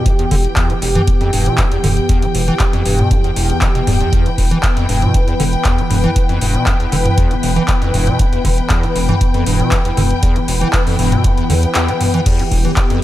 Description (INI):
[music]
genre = acid house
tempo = 118 BPM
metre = 4/4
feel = straight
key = E minor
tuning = A4 = 441 Hz
[part]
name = warm analog pad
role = sustained chords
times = 0.0-13.0 s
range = E3 to B4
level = -20 LUFS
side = equal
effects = chorus, sidechain pumping
[part]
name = acid bass, square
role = riff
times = 0.0-13.0 s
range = E1 to E3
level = -20 LUFS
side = equal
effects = analog chorus, cassette tape, diffuse ambient delay
[part]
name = rich studio string section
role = texture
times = 0.0-13.0 s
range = G5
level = -24 LUFS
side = left 3 dB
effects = sidechain pumping
[part]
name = booming analog drum machine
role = drums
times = 0.1-13.0 s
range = crash cymbal, handclaps, hi-hat, toms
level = -20 LUFS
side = equal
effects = none
[part]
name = electronic kick drum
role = drums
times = 0.1-12.9 s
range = none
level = -15 LUFS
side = equal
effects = none
[part]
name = round analog bass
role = bass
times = 0.3-12.7 s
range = D1 to E2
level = -18 LUFS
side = equal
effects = tube saturation, sidechain pumping
[sound]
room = light reverb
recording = none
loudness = -12 LUFS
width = side -14 dB against mid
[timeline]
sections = 0.0-13.0 A section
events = kick drops out 11.8-12.3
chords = 0.0 Em